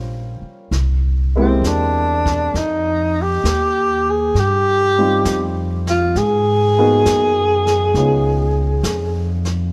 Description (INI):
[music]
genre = jazz ballad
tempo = 67 BPM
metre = 4/4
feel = swing 68% on 8ths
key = unclear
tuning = A4 = 440 Hz
[part]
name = warm baby grand piano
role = accompaniment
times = 0.0-9.7 s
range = G3 to C5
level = -24 LUFS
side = equal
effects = none
[part]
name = upright bass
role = bass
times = 0.0-9.7 s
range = Bb1 to Ab2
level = -22 LUFS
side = equal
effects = none
[part]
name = jazz brush drum kit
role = drums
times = 0.7-9.7 s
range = brushed snare drum, hi-hat, kick drum, snare drum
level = -30 LUFS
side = equal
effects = none
[part]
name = breathy tenor saxophone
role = melody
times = 1.4-9.5 s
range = C4 to Ab4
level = -19 LUFS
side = equal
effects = none
[sound]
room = light reverb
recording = none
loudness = -17 LUFS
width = mono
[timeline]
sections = 0.0-9.7 A section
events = none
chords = 0.0 Gm7b5; 0.7 C7b13; 2.5 Fsus2; 6.2 Abm7; 7.9 Db9